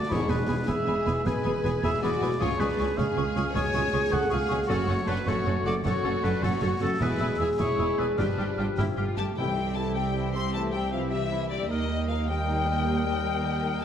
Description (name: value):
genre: cinematic, heroic adventure film score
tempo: 104 BPM (dotted quarters)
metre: 12/8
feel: straight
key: E mixolydian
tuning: A4 = 440 Hz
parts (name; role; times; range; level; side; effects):
- rich symphonic violin section; melody; 0.0-13.8 s; D5 to C6; -37 LUFS; left 7 dB; none
- clear oboe; second line; 0.0-13.8 s; A4 to G#5; -34 LUFS; equal; none
- rich symphonic violin section; second line; 0.0-13.8 s; C#4 to E5; -36 LUFS; left 4 dB; none
- rich symphonic viola section; accompaniment; 0.0-13.8 s; E3 to A4; -36 LUFS; right 1 dB; none
- warm French horn section; sustained chords; 0.0-13.8 s; D3 to G#4; -32 LUFS; left 1 dB; none
- bright clarinet; second line; 0.1-13.8 s; G4 to Bb4; -38 LUFS; left 3 dB; none
- mellow hollow concert flute; second line; 0.1-13.8 s; D5 to F6; -37 LUFS; left 2 dB; none
- dark studio cello section; bass; 0.1-13.8 s; C2 to G2; -32 LUFS; right 3 dB; none
- rich studio double bass section; bass; 0.1-13.8 s; E1 to Eb2; -32 LUFS; right 3 dB; none
- concert snare drum, clash cymbals and concert bass drum; drums; 0.1-9.0 s; none; -34 LUFS; left 1 dB; none
- timpani; percussion; 0.1-0.6, 9.4-9.9 s; E2 to C3; -35 LUFS; left 1 dB; none
room: wet concert hall reverb, RT60 1.7 s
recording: none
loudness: -24 LUFS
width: side -9 dB against mid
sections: 0.0-9.4 A section; 9.4-13.8 B section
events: none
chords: 0.1 E; 2.4 C#; 4.7 F#m; 7.0 E; 8.2 G7; 9.4 C; 11.7 Eb